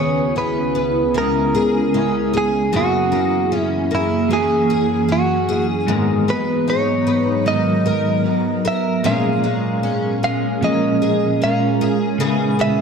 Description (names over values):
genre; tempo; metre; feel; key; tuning
dream pop; 76 BPM; 4/4; straight; G# minor; A4 = 440 Hz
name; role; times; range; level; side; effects
direct-recorded clean electric guitar; melody; 0.0-12.8 s; E4 to E#5; -21 LUFS; right 3 dB; wide subtle chorus, ping-pong delay
electric guitar at the edge of break-up; accompaniment; 0.0-12.8 s; G#2 to B4; -22 LUFS; right 2 dB; tremolo, wide subtle chorus
ethereal airy pad; sustained chords; 0.0-12.8 s; C#2 to A#5; -21 LUFS; equal; ensemble chorus, built-in reverb
picked twelve-string acoustic guitar; arpeggios; 0.0-12.8 s; F#2 to A#4; -22 LUFS; left 4 dB; ensemble chorus, ping-pong delay
room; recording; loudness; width
wet scoring stage reverb, RT60 1.5 s; dark, warm production; -16 LUFS; side -6 dB against mid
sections
0.0-12.8 A section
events
none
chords
0.0 C#m7; 2.7 F#9; 5.9 G#m9; 9.0 A#m7; 12.2 C#m7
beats
0.36 1.15 1.94 | 2.73 3.52 4.30 5.09 | 5.88 6.67 7.46 8.25 | 9.04 9.83 10.62 11.41 | 12.20